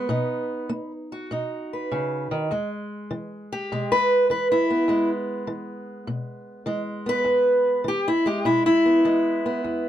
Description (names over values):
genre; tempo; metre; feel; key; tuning
acoustic country blues, solo or duo; 101 BPM; 4/4; swing 68% on 8ths; E major; A4 = 440 Hz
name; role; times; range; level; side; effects
fingerpicked steel-string acoustic guitar; solo; 0.0-9.9 s; E2 to B4; -21 LUFS; equal; none
room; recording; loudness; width
moderate booth ambience, RT60 0.3 s; dark, warm production; -21 LUFS; side -11 dB against mid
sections
0.0-2.5 A section; 2.5-9.9 B section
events
steel-string acoustic guitar solo 2.5-9.9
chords
0.1 B; 2.5 E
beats
| 0.11 0.70 1.30 1.90 | 2.50 3.09 3.69 4.29 | 4.88 5.48 6.07 6.67 | 7.26 7.86 8.45 9.04 | 9.64